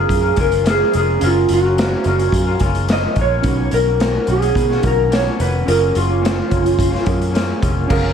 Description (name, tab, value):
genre	indie pop, bedroom pop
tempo	108 BPM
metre	4/4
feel	straight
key	F# major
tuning	A4 = 439 Hz
part	electric slide guitar	melody	0.0-7.0 s	E#4 to D#5	-18 LUFS	right 2 dB	lush chorus, slapback echo
part	electric guitar through a small old amp	accompaniment	0.0-8.1 s	B2 to A#4	-23 LUFS	left 6 dB	lush chorus, warbly pitch drift
part	warbly lo-fi synth keys	accompaniment	0.0-8.1 s	C#4 to E#5	-26 LUFS	right 4 dB	chorus, phaser, cassette tape
part	vintage muted picked electric bass	bass	0.0-8.1 s	E#1 to B2	-19 LUFS	equal	none
part	raw garage drum kit	drums	0.1-8.0 s	crash cymbal, hi-hat, kick drum, snare drum	-20 LUFS	equal	none
room	light reverb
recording	none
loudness	-14 LUFS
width	side -7 dB against mid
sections	0.0-7.9 A section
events	none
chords	0.0 F#maj9; 3.4 Bmaj9; 5.7 F#maj9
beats	0.10 0.66 | 1.21 1.77 2.33 2.89 | 3.44 4.00 4.56 5.12 | 5.67 6.23 6.79 7.35 | 7.90